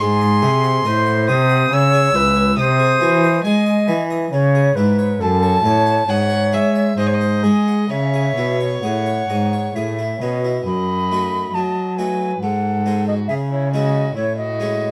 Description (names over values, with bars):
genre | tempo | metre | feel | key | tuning
classical, baroque-style sonata movement with continuo | 68 BPM | 3/4 | rubato | C# minor | A4 = 440 Hz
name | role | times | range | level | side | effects
rich violin | melody | 0.0-14.9 s | E4 to E6 | -24 LUFS | equal | none
silver concert flute | second line | 0.0-14.9 s | G#4 to B5 | -23 LUFS | equal | none
harpsichord | accompaniment | 0.0-14.9 s | C#2 to G#5 | -28 LUFS | equal | none
warm cello | bass | 0.0-14.9 s | C#2 to G#3 | -21 LUFS | equal | none
room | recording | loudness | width
light reverb | close, detailed microphones | -17 LUFS | mono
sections
0.0-10.7 A section; 10.7-14.9 A section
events
none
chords
0.0 G#7; 1.7 C#m; 2.6 G#7/B#; 4.3 C#m; 5.2 F#m; 6.1 C#m/G#; 7.0 G#7; 7.9 C#m; 10.7 D#dim/F#; 12.4 G#; 13.3 C#m